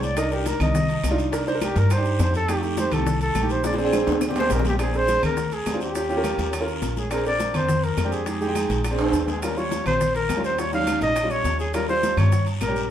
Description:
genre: Afro-Cuban jazz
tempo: 207 BPM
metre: 4/4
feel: straight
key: Bb mixolydian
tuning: A4 = 440 Hz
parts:
  - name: dark trumpet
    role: melody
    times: 0.0-12.9 s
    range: G4 to F5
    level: -25 LUFS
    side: equal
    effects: none
  - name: clear concert grand piano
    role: accompaniment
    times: 0.0-12.8 s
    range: G3 to G5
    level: -26 LUFS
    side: right 2 dB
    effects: none
  - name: upright bass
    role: bass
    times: 0.0-12.9 s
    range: Bb1 to G2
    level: -26 LUFS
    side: equal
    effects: none
  - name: bongos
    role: percussion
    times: 0.0-12.9 s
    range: none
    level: -34 LUFS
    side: left 4 dB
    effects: none
  - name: congas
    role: percussion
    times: 0.0-12.9 s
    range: none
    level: -29 LUFS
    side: left 2 dB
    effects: none
  - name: guiro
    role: percussion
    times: 0.0-12.9 s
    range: none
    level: -39 LUFS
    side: left 4 dB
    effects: none
  - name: maracas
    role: percussion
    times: 0.0-12.9 s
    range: none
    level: -41 LUFS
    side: right 5 dB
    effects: none
  - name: claves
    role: percussion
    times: 0.2-12.8 s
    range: none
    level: -40 LUFS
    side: right 4 dB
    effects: none
  - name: timbales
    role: percussion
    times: 0.2-12.8 s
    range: none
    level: -32 LUFS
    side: right 2 dB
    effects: none
room: wet studio reverb, RT60 0.8 s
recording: heard from further back in the room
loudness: -20 LUFS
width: side -10 dB against mid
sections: 0.0-4.8 A section; 4.8-12.9 B section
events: trumpet solo 0.0-4.8; drum fill 3.6-4.8, 9.0-9.4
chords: 0.2 Cm7; 2.5 F7; 3.6 Bb7; 6.0 Eb7; 7.1 Bb; 8.3 Fm7; 8.8 Bb7; 9.4 Eb7

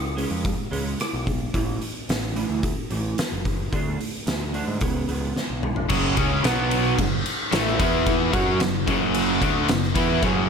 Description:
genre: quiet-loud alternative rock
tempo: 110 BPM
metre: 4/4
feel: straight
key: F# minor from 5.9 s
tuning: A4 = 439 Hz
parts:
  - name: electric guitar through a small old amp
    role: arpeggios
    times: 0.0-5.9 s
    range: A2 to D4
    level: -30 LUFS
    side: right 5 dB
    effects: ensemble chorus
  - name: growling picked electric bass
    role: bass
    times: 0.0-10.5 s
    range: F#1 to G#2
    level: -28 LUFS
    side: equal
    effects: overdrive
  - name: oversized low-tuned drum kit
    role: drums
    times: 0.2-10.4 s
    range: crash cymbal, hi-hat, kick drum, ride cymbal, rim click, snare drum, toms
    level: -25 LUFS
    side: equal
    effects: none
  - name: cranked stack guitar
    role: riff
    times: 5.9-10.5 s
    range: F#2 to F#4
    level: -26 LUFS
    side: right 12 dB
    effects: overdrive, spring reverb
  - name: cranked stack guitar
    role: riff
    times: 5.9-10.5 s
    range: F#2 to F#4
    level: -26 LUFS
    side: equal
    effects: overdrive, phaser
  - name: overdriven semi-hollow guitar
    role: riff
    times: 5.9-10.5 s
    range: F#2 to F#4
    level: -25 LUFS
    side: left 14 dB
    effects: none
room: light reverb, studio reverb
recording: none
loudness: -21 LUFS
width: side -6 dB against mid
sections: 0.0-5.9 A section; 5.9-10.5 B section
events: drum fill 5.4-5.9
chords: 0.0 C#; 1.5 A5; 3.7 D5; 4.8 C#5; 5.9 F#5; 6.4 B5; 7.0 F#m; 7.8 E5; 8.3 F#m

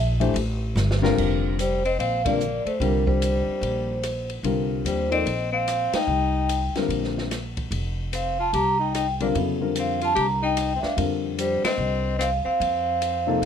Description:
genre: modal jazz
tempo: 147 BPM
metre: 4/4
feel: swing 64% on 8ths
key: unclear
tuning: A4 = 439 Hz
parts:
  - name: upright bass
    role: bass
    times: 0.0-13.5 s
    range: F1 to F2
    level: -27 LUFS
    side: right 1 dB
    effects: none
  - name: warm concert grand piano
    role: accompaniment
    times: 0.2-13.5 s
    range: C3 to D5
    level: -26 LUFS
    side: left 6 dB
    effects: none
  - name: open jazz drum kit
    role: drums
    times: 0.2-13.5 s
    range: crash cymbal, hi-hat, kick drum, ride cymbal, rim click, snare drum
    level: -33 LUFS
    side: equal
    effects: none
  - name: vibraphone with soft mallets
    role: melody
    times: 1.6-13.5 s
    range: Bb4 to Bb5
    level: -25 LUFS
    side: right 1 dB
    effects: none
  - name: breathy tenor saxophone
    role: second line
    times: 1.6-13.5 s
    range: G3 to G4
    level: -28 LUFS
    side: left 6 dB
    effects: none
room: light reverb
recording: none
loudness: -21 LUFS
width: side -8 dB against mid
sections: 0.0-1.2 A section; 1.2-13.5 B section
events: drum fill 0.8-1.2; band accent 2.2, 5.9, 11.6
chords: 0.0 C7sus2; 1.2 Fsus4

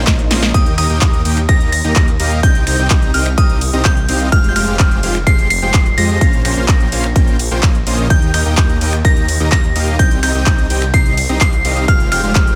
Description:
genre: EDM, festival progressive house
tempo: 127 BPM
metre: 4/4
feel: straight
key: F minor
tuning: A4 = 440 Hz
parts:
  - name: dense compressed supersaw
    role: riff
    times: 0.0-12.6 s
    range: Ab3 to Bb5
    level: -23 LUFS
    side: equal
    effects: sidechain pumping
  - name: detuned saw bass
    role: bass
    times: 0.0-12.6 s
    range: F1 to F2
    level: -20 LUFS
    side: equal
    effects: chorus, tube saturation, sidechain pumping
  - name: swell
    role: sound effects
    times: 0.0-0.5 s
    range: none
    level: -33 LUFS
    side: equal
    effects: none
  - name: big-room dance drum kit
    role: drums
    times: 0.1-12.6 s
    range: finger snaps, handclaps, hi-hat, ride cymbal, snare drum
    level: -23 LUFS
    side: equal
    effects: none
  - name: electronic kick drum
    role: drums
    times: 0.1-12.4 s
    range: none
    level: -15 LUFS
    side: equal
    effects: none
  - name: glassy synth bell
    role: melody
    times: 0.5-12.6 s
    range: Eb6 to C7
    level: -22 LUFS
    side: equal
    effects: chorus, dub echo
room: digital ambience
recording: faint mains hum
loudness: -14 LUFS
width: mono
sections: 0.0-12.6 A section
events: drum fill 0.0-0.5; swell 0.0-0.5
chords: 0.0 Bbmadd9; 0.5 Eb; 2.4 Cm; 4.3 Fmadd9; 6.2 Bbmadd9; 8.1 Eb; 10.0 Cm; 11.9 Fmadd9

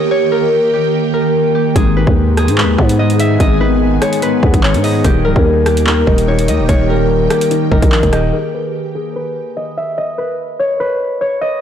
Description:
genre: hip hop, drill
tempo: 146 BPM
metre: 4/4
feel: half-time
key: unclear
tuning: A4 = 440 Hz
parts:
  - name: concert harp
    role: melody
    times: 0.0-11.6 s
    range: G4 to E5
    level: -17 LUFS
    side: left 2 dB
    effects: low-pass filter
  - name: ethereal airy pad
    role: sustained chords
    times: 0.0-8.3 s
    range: D#3 to G#4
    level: -19 LUFS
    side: right 2 dB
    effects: ensemble chorus, built-in reverb, phaser
  - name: dark baby grand piano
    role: accompaniment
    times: 1.8-8.4 s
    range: G#2 to D#5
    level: -18 LUFS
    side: left 3 dB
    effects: low-pass filter
  - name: growling 808-style bass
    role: bass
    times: 1.8-8.3 s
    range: C#1 to G#2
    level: -14 LUFS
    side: equal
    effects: none
  - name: drill drum kit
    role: drums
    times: 1.8-8.2 s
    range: handclaps, hi-hat, kick drum, rim click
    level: -15 LUFS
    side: equal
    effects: none
room: light reverb, digital ambience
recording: blown-out, overdriven recording, overdrive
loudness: -11 LUFS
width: side -9 dB against mid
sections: 0.0-8.3 A section; 8.3-11.6 B section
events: filter sweep on harp 8.3-11.6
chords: 0.0 D#; 1.8 G#m; 5.0 D#; 8.3 N.C.

